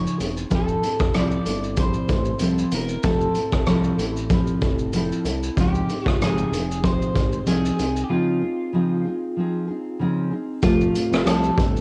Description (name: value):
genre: indie pop, bedroom pop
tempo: 95 BPM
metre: 4/4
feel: swing 55% on 16ths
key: F major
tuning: A4 = 441 Hz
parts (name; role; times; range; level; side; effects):
- electric guitar through a small old amp; melody; 0.0-11.8 s; F4 to D5; -30 LUFS; equal; subtle chorus, cassette tape
- nylon-string guitar; accompaniment; 0.0-11.8 s; Db3 to A4; -26 LUFS; equal; lush chorus, warbly pitch drift, cassette tape
- fat analog bass; bass; 0.0-11.8 s; E1 to Db2; -29 LUFS; equal; none
- raw garage drum kit; drums; 0.1-11.8 s; hi-hat, kick drum, rim click, shaker; -26 LUFS; equal; cassette tape
room: light reverb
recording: home recording on cassette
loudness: -22 LUFS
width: mono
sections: 0.0-10.6 A section; 10.6-11.8 B section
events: break 8.1-10.6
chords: 0.0 Dbmaj9; 0.5 Fmaj7; 5.6 Dbmaj9; 10.6 Fadd9